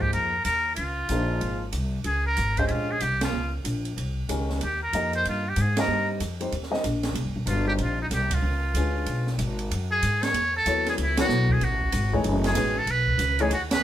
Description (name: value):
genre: modal jazz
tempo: 188 BPM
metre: 4/4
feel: swing 63% on 8ths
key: Bb dorian, F# dorian from 9.7 s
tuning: A4 = 440 Hz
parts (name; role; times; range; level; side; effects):
- trumpet with metal mute; melody; 0.0-13.8 s; Eb4 to C#5; -26 LUFS; equal; none
- warm grand piano; accompaniment; 0.0-13.5 s; Eb3 to Eb5; -29 LUFS; left 2 dB; none
- upright bass; bass; 0.0-13.8 s; Eb1 to Ab2; -27 LUFS; equal; none
- open jazz drum kit; drums; 0.0-13.8 s; hi-hat, kick drum, ride cymbal, snare drum; -32 LUFS; right 3 dB; none
room: light reverb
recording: band playing live in one room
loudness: -23 LUFS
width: side -12 dB against mid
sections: 0.0-9.7 A section; 9.7-13.8 B section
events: band accent 3.2, 5.7, 8.3, 11.1, 13.7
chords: 0.0 Bbm9; 4.6 Cm; 8.4 Db7b9; 9.7 F#m9; 12.2 B/F#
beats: 0.13 0.45 | 0.77 1.09 1.41 1.73 | 2.05 2.37 2.69 3.01 | 3.33 3.65 3.97 4.29 | 4.60 4.92 5.24 5.56 | 5.88 6.20 6.52 6.84 | 7.15 7.47 7.79 8.11 | 8.43 8.75 9.07 9.38 | 9.70 10.02 10.34 10.66 | 10.98 11.29 11.61 11.93 | 12.25 12.57 12.88 13.20 | 13.52